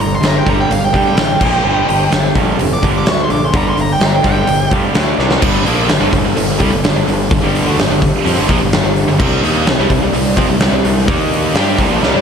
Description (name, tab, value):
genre	hard rock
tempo	127 BPM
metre	4/4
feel	straight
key	G minor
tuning	A4 = 441 Hz
part	smooth overdriven lead guitar	melody	0.0-4.7 s	F5 to D6	-18 LUFS	right 2 dB	slapback echo
part	airy breathy pad	sustained chords	0.0-12.2 s	G3 to D5	-25 LUFS	equal	none
part	sludgy distorted guitar	riff	0.0-12.2 s	G2 to G4	-20 LUFS	left 8 dB	overdrive
part	tight distorted guitar	riff	0.0-12.2 s	G2 to G4	-20 LUFS	right 9 dB	distortion, slapback echo
part	fuzz fingered electric bass	bass	0.0-12.2 s	F1 to G2	-19 LUFS	equal	overdrive
part	huge arena drum kit	drums	0.0-12.1 s	crash cymbal, hi-hat, kick drum, snare drum	-15 LUFS	equal	none
part	heavy high-gain guitar	riff	5.4-12.2 s	G2 to G4	-21 LUFS	left 1 dB	distortion, slapback echo
room	moderate lush hall reverb, RT60 1.9 s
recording	big arena sound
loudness	-11 LUFS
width	side -7 dB against mid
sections	0.0-5.4 A section; 5.4-12.2 B section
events	lead electric guitar solo 0.0-5.4; drum fill 5.2, 12.0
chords	0.0 Gm; 1.4 Bb5; 1.7 G5; 5.0 D5; 5.2 C5; 5.4 Gm; 9.2 C5; 11.1 Eb5; 11.6 C5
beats	0.24 0.71 1.19 | 1.66 2.13 2.60 3.07 | 3.55 4.02 4.49 4.96 | 5.43 5.90 6.37 6.84 | 7.32 7.79 8.26 8.73 | 9.20 9.67 10.14 10.61 | 11.08 11.55 12.02